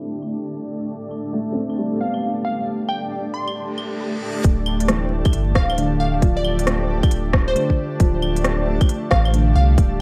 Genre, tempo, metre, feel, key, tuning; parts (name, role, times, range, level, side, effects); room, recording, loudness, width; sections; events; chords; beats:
future garage; 135 BPM; 4/4; swing 64% on 16ths; D dorian; A4 = 441 Hz
felt-muted upright piano; accompaniment; 0.0-10.0 s; D3 to A4; -29 LUFS; equal; sidechain pumping, analog delay
granular cloud pad; sustained chords; 0.0-10.0 s; A3 to A5; -28 LUFS; equal; built-in reverb, sidechain pumping
organic electronic drum kit; drums; 0.2-9.9 s; claves, hi-hat, rim click; -28 LUFS; equal; overdrive
glassy wavetable pluck; melody; 2.0-9.8 s; C5 to C6; -29 LUFS; equal; chorus, analog delay
reverse cymbal; sound effects; 3.7-4.4 s; -37 LUFS; equal
warm sub bass; bass; 4.4-10.0 s; D1 to C2; -23 LUFS; equal; sidechain pumping
electronic kick drum; drums; 4.4-9.9 s; -19 LUFS; equal
light reverb; vinyl crackle, low-pass filter; -20 LUFS; mono
0.0-4.4 A section; 4.4-10.0 B section
filter sweep on ambient pad 0.0-4.4; filter sweep 0.0-4.4; reverse cymbal 3.7-4.4
0.0 Dmadd9
0.00 0.45 | 0.89 1.33 1.78 2.22 | 2.67 3.11 3.56 4.00 | 4.45 4.89 5.33 5.78 | 6.22 6.67 7.11 7.56 | 8.00 8.45 8.89 9.34 | 9.78